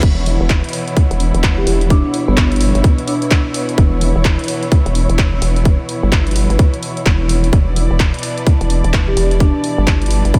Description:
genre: bass house.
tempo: 128 BPM.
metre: 4/4.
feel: swing 61% on 16ths.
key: E dorian.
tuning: A4 = 440 Hz.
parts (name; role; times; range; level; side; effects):
muted studio string section; sustained chords; 0.0-10.4 s; B2 to D5; -26 LUFS; equal; sidechain pumping.
vowel-sweep wobble bass; bass; 0.0-10.3 s; E1 to G1; -18 LUFS; equal; chorus, tube saturation, sidechain pumping.
big-room dance drum kit; drums; 0.0-10.4 s; crash cymbal, handclaps, hi-hat; -26 LUFS; equal; studio reverb.
electronic kick drum; drums; 0.0-10.4 s; none; -15 LUFS; equal; studio reverb.
warbly tape-like pad; texture; 0.0-10.4 s; E4 to E6; -29 LUFS; equal; chorus, built-in reverb, sidechain pumping.
marimba with soft mallets; melody; 1.6-3.5, 9.1-10.4 s; B3 to G4; -23 LUFS; equal; analog delay.
room: light reverb.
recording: none.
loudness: -15 LUFS.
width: mono.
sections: 0.0-10.4 A section.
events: none.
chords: 0.0 E5.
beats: | 0.03 0.50 0.97 1.44 | 1.90 2.37 2.84 3.31 | 3.78 4.25 4.72 5.18 | 5.65 6.12 6.59 7.06 | 7.53 8.00 8.47 8.94 | 9.40 9.87 10.34.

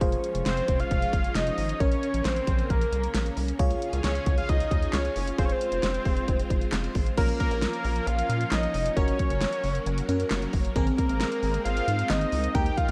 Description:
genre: synth-pop.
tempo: 134 BPM.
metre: 4/4.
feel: straight.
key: Bb minor.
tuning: A4 = 440 Hz.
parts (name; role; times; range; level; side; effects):
FM electric piano; accompaniment; 0.0-12.9 s; C4 to Db5; -36 LUFS; equal; chorus, phaser.
string machine, violins; sustained chords; 0.0-12.9 s; Db3 to Bb4; -38 LUFS; equal; ensemble chorus.
rubbery square bass; bass; 0.0-12.9 s; F1 to Bb2; -32 LUFS; equal; none.
pop drum kit; drums; 0.0-12.9 s; crash cymbal, handclaps, hi-hat, kick drum, snare drum; -30 LUFS; equal; none.
fat analog lead; melody; 0.5-12.9 s; Bb4 to G5; -32 LUFS; equal; slapback echo.
room: moderate lush hall reverb, RT60 1.9 s, digital ambience.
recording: dark, warm production.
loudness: -26 LUFS.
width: mono.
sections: 0.0-7.2 A section; 7.2-12.9 B section.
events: none.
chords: 0.0 Fm; 1.8 Bbmadd9; 3.6 Db; 5.4 Fm; 7.2 Bbm; 9.0 Gb; 10.8 Abadd9.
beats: | 0.01 0.46 0.91 1.35 | 1.80 2.25 2.70 3.15 | 3.59 4.04 4.49 4.94 | 5.38 5.83 6.28 6.73 | 7.18 7.62 8.07 8.52 | 8.97 9.41 9.86 10.31 | 10.76 11.21 11.65 12.10 | 12.55.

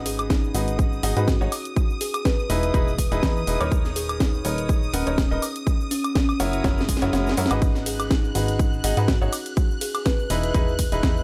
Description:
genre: piano house.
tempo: 123 BPM.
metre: 4/4.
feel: swing 55% on 16ths.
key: unclear.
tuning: A4 = 438 Hz.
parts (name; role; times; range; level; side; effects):
string machine, violins; sustained chords; 0.0-11.2 s; D#6 to F#6; -38 LUFS; equal; ensemble chorus, sidechain pumping.
bright grand piano; riff; 0.0-11.2 s; D#4 to F#5; -30 LUFS; equal; sidechain pumping, delay.
plucky analog bass; bass; 0.0-11.2 s; D#1 to G#2; -29 LUFS; equal; sidechain pumping.
kalimba; melody; 0.1-10.4 s; C#4 to B4; -32 LUFS; equal; delay.
house drum kit; drums; 0.1-11.2 s; cabasa, hi-hat, ride cymbal, snare drum, woodblock; -31 LUFS; equal; overdrive.
electronic kick drum; drums; 0.3-11.1 s; none; -25 LUFS; equal; overdrive.
swell; sound effects; 6.8-7.6 s; none; -39 LUFS; equal; none.
room: little or no reverb.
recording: none.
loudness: -23 LUFS.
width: mono.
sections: 0.0-11.2 A section.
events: drum fill 6.6-7.6; swell 6.8-7.6; kick drops out 7.1-7.6.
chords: 0.0 G#m7; 1.5 Emaj7; 3.7 Bmaj9/D#; 5.4 F#7; 7.6 G#m7; 9.3 Emaj7.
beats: 0.30 0.79 1.28 | 1.76 2.25 2.74 3.23 | 3.71 4.20 4.69 5.18 | 5.67 6.15 6.64 7.13 | 7.62 8.11 8.59 9.08 | 9.57 10.06 10.54 11.03.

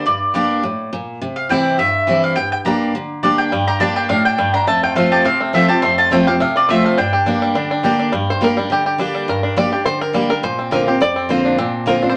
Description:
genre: bluegrass.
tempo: 208 BPM.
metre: 4/4.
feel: swing 54% on 8ths.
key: G dorian.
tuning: A4 = 443 Hz.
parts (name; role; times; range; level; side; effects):
mandolin; melody; 0.0-7.8 s; D5 to C6; -20 LUFS; equal; none.
picked steel-string acoustic guitar; accompaniment; 0.0-12.2 s; F2 to G4; -20 LUFS; equal; none.
bluegrass banjo; melody; 3.5-12.2 s; G3 to D5; -21 LUFS; equal; none.
room: moderate studio reverb, RT60 0.8 s.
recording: none.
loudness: -17 LUFS.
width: mono.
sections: 0.0-8.1 A section; 8.1-12.2 B section.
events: five-string banjo solo 8.1-12.2.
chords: 0.0 Gm; 1.2 C; 2.4 Gm; 4.7 F; 7.0 Gm; 10.4 Bbadd9.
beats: | 0.06 0.35 0.64 0.92 | 1.21 1.50 1.79 2.08 | 2.37 2.65 2.94 3.23 | 3.52 3.81 4.10 4.38 | 4.67 4.96 5.25 5.54 | 5.83 6.11 6.40 6.69 | 6.98 7.27 7.55 7.84 | 8.13 8.42 8.71 8.99 | 9.28 9.57 9.86 10.15 | 10.43 10.72 11.01 11.30 | 11.58 11.87 12.16.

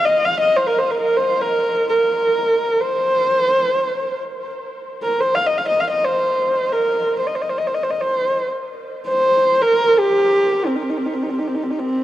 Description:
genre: mongolian traditional, Mongolian folk.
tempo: free time.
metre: none.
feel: none.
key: C yu mode.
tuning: A4 = 440 Hz.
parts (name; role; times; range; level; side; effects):
warm horsehead fiddle; solo; 0.0-12.0 s; C4 to F5; -16 LUFS; equal; none.
room: moderate huge ambient reverb, RT60 8.3 s.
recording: worn, warbling old tape, cassette tape, warbly pitch drift.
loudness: -16 LUFS.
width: side -13 dB against mid.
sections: 0.0-12.0 A section.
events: none.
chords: none.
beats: free time.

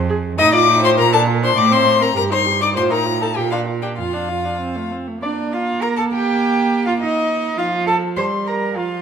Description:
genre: quick classical-period movement for string quartet.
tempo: 101 BPM.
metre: 2/4.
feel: rubato.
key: Bb major.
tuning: A4 = 445 Hz.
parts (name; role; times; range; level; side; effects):
rich cello; bass; 0.0-9.0 s; F2 to C5; -22 LUFS; right 5 dB; none.
warm viola; accompaniment; 0.1-9.0 s; F3 to Ab4; -22 LUFS; right 3 dB; none.
rich violin; melody; 0.4-9.0 s; D5 to Eb6; -20 LUFS; left 8 dB; none.
dark violin; second line; 0.4-9.0 s; F4 to C6; -21 LUFS; left 3 dB; none.
room: wet recital hall reverb, RT60 1.5 s.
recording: none.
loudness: -15 LUFS.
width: side -7 dB against mid.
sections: 0.0-5.2 A section; 5.2-9.0 B section.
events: none.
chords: 0.4 F7/A; 1.0 Bb; 1.6 Amadd11; 2.2 Eb/G; 2.8 F7/A; 3.4 Bb; 4.0 Dm/F; 4.6 F; 5.2 Bb; 6.4 Eb/Bb; 7.6 F; 8.2 Gmadd11.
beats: | 0.39 0.98 | 1.57 2.16 | 2.76 3.36 | 3.98 4.60 | 5.22 5.82 | 6.41 7.00 | 7.58 8.16 | 8.76.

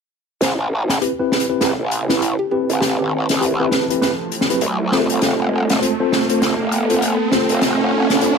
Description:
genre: glitch hop.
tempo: 100 BPM.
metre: 4/4.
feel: swing 61% on 16ths.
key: A minor.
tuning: A4 = 442 Hz.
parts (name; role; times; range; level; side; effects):
woody wave-folded pluck; melody; 0.4-3.9 s; E4 to C5; -25 LUFS; right 1 dB; chorus, tape echo.
dark analog pad; sustained chords; 0.4-8.4 s; A4 to A5; -26 LUFS; right 2 dB; chorus.
growl bass; bass; 0.4-8.4 s; F1 to C2; -21 LUFS; equal; chorus, high-pass filter.
open jazz drum kit; drums; 0.4-8.4 s; hi-hat, snare drum; -21 LUFS; left 1 dB; none.
riser; sound effects; 1.8-8.4 s; none; -24 LUFS; right 3 dB; none.
mellow tine electric piano; stabs; 1.0-8.3 s; C4 to C5; -21 LUFS; left 1 dB; medium stereo tremolo, low-pass filter, tape echo.
room: light reverb, small room ambience.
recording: none.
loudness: -16 LUFS.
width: side -6 dB against mid.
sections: 0.4-8.4 A section.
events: build-up 0.4-8.4; drum fill 0.4-8.4; filter sweep on analog synth pad 0.4-8.4; riser 1.8-8.4.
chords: 0.4 Am7; 5.2 F.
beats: | 0.42 1.02 1.62 2.22 | 2.82 3.42 4.02 4.62 | 5.22 5.82 6.42 7.02 | 7.62 8.22.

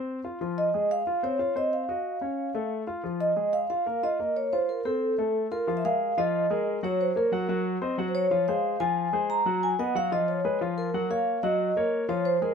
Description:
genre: jazz.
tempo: 182 BPM.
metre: 4/4.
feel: straight.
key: Bb minor.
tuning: A4 = 439 Hz.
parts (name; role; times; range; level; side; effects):
clear concert grand piano; accompaniment; 0.0-12.5 s; F3 to Gb5; -29 LUFS; left 3 dB; none.
vibraphone with soft mallets; melody; 0.6-12.5 s; A4 to Bb5; -26 LUFS; right 1 dB; none.
room: light reverb.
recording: none.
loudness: -25 LUFS.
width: side -6 dB against mid.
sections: 0.0-5.7 A section; 5.7-12.5 B section.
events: none.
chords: 0.4 Dbmaj9; 1.7 Cdim; 2.4 Faug; 3.0 Bb5; 5.0 F; 5.7 Bb5; 7.0 Gb; 7.7 Cdim/Gb; 8.3 Fmadd11; 9.6 Ebmadd9; 10.3 Db7; 10.9 Gbmaj7.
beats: 0.08 | 0.41 0.74 1.07 1.40 | 1.73 2.06 2.38 2.71 | 3.04 3.37 3.70 4.03 | 4.36 4.69 5.02 5.35 | 5.68 6.01 6.33 6.66 | 6.99 7.32 7.65 7.98 | 8.31 8.64 8.97 9.30 | 9.63 9.96 10.28 10.61 | 10.94 11.27 11.60 11.93 | 12.26.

